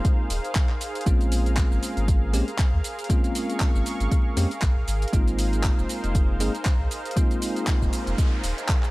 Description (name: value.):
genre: deep house.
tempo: 118 BPM.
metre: 4/4.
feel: swing 56% on 16ths.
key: unclear.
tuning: A4 = 440 Hz.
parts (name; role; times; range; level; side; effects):
warm analog pad; sustained chords; 0.0-8.9 s; Eb4 to Db6; -33 LUFS; right 1 dB; chorus, sidechain pumping.
bell-like tine electric piano; stabs; 0.0-8.4 s; Ab3 to Ab4; -30 LUFS; equal; medium stereo tremolo, sidechain pumping.
deep house drum kit; drums; 0.0-8.9 s; handclaps, hi-hat, shaker; -32 LUFS; equal; none.
electronic kick drum; drums; 0.0-8.8 s; none; -22 LUFS; equal; none.
round analog bass; bass; 0.3-8.5 s; Eb1 to F2; -25 LUFS; equal; sidechain pumping.
noise sweep; sound effects; 7.6-8.9 s; none; -37 LUFS; right 2 dB; none.
room: little or no reverb.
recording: vinyl crackle.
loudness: -21 LUFS.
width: side -20 dB against mid.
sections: 0.0-8.9 A section.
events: noise sweep 7.6-8.9.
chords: 0.0 Ab69; 1.1 Bbm9; 4.9 Ab69.